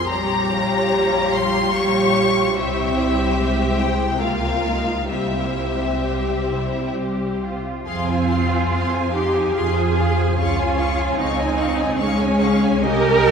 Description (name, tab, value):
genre	classical, slow romantic movement for string orchestra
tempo	63-77 BPM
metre	3/4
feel	rubato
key	F minor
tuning	A4 = 439 Hz
part	warm symphonic violin section	melody	0.0-13.3 s	E5 to Db6	-25 LUFS	left 4 dB	none
part	warm symphonic violin section	second line	0.0-13.3 s	F4 to Ab5	-26 LUFS	left 3 dB	none
part	warm studio viola section	accompaniment	0.0-13.3 s	G3 to G4	-22 LUFS	equal	none
part	warm symphonic cello section	bass	0.0-13.3 s	Db4 to Bb4	-24 LUFS	right 3 dB	none
part	warm symphonic double bass section	bass	0.0-13.3 s	Bb1 to F2	-25 LUFS	right 1 dB	none
room	wet cathedral reverb, RT60 4.9 s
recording	recorded in a church or concert hall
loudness	-17 LUFS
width	side -6 dB against mid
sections	0.0-7.9 A section; 7.9-13.3 A section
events	none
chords	0.1 Gdim/Bb; 2.6 C; 4.2 Bbm/Db; 5.1 C; 7.9 Fm; 10.4 Db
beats	| 0.11 0.94 1.76 | 2.57 3.37 4.21 | 5.09 6.01 6.94 | 7.86 8.71 9.56 | 10.39 11.17 11.97 | 12.85